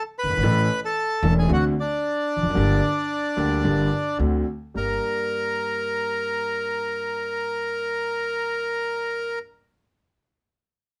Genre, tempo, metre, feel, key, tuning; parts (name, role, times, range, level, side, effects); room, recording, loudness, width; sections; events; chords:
tango; 112 BPM; 4/4; rubato; G minor; A4 = 440 Hz
bandoneon; melody; 0.0-9.4 s; D4 to B5; -27 LUFS; equal
warm concert grand piano; accompaniment; 0.2-9.4 s; E1 to A4; -27 LUFS; equal
upright bass; bass; 0.2-5.0 s; E1 to D2; -27 LUFS; equal
moderate studio reverb, RT60 0.5 s; -24 LUFS; mono
0.0-4.7 A section; 4.7-9.1 B section
0.4 A; 1.5 D7; 2.6 Gm; 4.2 D7; 4.7 Gm